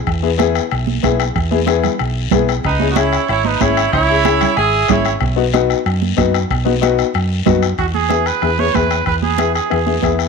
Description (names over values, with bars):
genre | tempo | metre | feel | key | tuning
latin, cumbia | 187 BPM | 4/4 | straight | E major | A4 = 441 Hz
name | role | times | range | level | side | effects
hollow-body short-scale fingered electric bass | bass | 0.1-10.3 s | G#1 to F#2 | -20 LUFS | right 1 dB | none
bombo | percussion | 0.1-10.3 s | none | -22 LUFS | left 3 dB | none
congas | percussion | 0.1-10.2 s | none | -21 LUFS | right 14 dB | none
guiro | percussion | 0.1-10.3 s | none | -30 LUFS | left 13 dB | none
warm upright piano | accompaniment | 0.2-10.3 s | B3 to G#4 | -18 LUFS | left 11 dB | none
clear saxophone section | melody | 2.7-5.1 s | D#4 to G#4 | -17 LUFS | right 3 dB | none
clear trumpet | second line | 2.7-5.1, 7.8-10.2 s | F#4 to E5 | -19 LUFS | right 10 dB | none
room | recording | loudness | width
moderate echo chamber reverb, RT60 1.5 s, studio ambience | 1960s-style stereo with parts hard left and right | -13 LUFS | side -4 dB against mid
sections
0.0-7.8 A section; 7.8-10.3 B section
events
trumpet solo 7.8-10.3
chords
0.0 E; 2.6 C#m; 5.2 B; 7.8 E